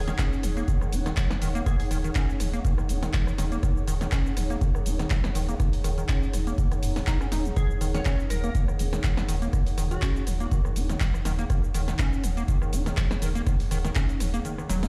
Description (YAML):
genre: acid house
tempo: 122 BPM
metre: 4/4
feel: swing 55% on 16ths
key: Eb minor pentatonic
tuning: A4 = 442 Hz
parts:
  - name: glassy wavetable pluck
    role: melody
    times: 0.0-1.9, 7.6-10.4 s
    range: Gb4 to Db5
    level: -43 LUFS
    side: equal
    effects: chorus, digital delay
  - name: round analog bass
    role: bass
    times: 0.0-14.9 s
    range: Eb1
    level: -31 LUFS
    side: equal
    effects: sidechain pumping
  - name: ethereal airy pad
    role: texture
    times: 0.0-14.9 s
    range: Eb4 to Gb5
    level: -39 LUFS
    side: equal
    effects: ensemble chorus, built-in reverb, sidechain pumping
  - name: acid bass, square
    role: riff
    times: 0.1-14.9 s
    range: Eb2 to Eb4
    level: -35 LUFS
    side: equal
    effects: analog chorus, cassette tape, dub echo
  - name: punchy analog drum machine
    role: drums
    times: 0.1-14.9 s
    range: handclaps, hi-hat, rim click, shaker, snare drum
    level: -37 LUFS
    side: equal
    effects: none
  - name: electronic kick drum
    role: drums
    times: 0.2-14.1 s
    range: none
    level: -28 LUFS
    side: equal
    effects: none
room: digital ambience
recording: played on a big sound system in a bare room, large studio reverb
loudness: -26 LUFS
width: mono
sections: 0.0-14.9 A section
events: break 14.4-14.9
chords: 0.0 Ebm7